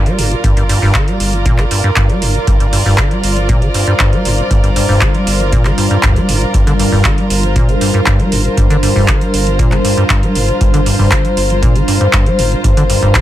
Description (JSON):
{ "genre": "acid house", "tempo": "118 BPM", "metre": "4/4", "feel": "straight", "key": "G minor pentatonic", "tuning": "A4 = 440 Hz", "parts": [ { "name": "dark analog pad", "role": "sustained chords", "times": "0.0-13.2 s", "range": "G3 to C5", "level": "-20 LUFS", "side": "left 1 dB", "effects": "chorus, sidechain pumping" }, { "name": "acid bass, square", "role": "riff", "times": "0.0-13.2 s", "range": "G2 to G3", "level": "-15 LUFS", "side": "equal", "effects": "tube saturation, dub echo" }, { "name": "round analog bass", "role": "bass", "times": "0.0-13.1 s", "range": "F1 to D2", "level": "-18 LUFS", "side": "equal", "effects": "tube saturation, sidechain pumping" }, { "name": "dark chamber string section", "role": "texture", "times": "0.0-13.2 s", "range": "F4 to D5", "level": "-19 LUFS", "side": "right 1 dB", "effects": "sidechain pumping" }, { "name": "electro analog drum machine", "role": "drums", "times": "0.1-13.2 s", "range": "handclaps, hi-hat", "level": "-18 LUFS", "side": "right 1 dB", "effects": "none" }, { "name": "electronic kick drum", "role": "drums", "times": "0.4-13.2 s", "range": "none", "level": "-14 LUFS", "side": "equal", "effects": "none" } ], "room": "light reverb", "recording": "none", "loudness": "-10 LUFS", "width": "side -13 dB against mid", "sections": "0.0-13.2 A section", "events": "filter sweep on acid bass 0.0-13.2", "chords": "0.0 Gm" }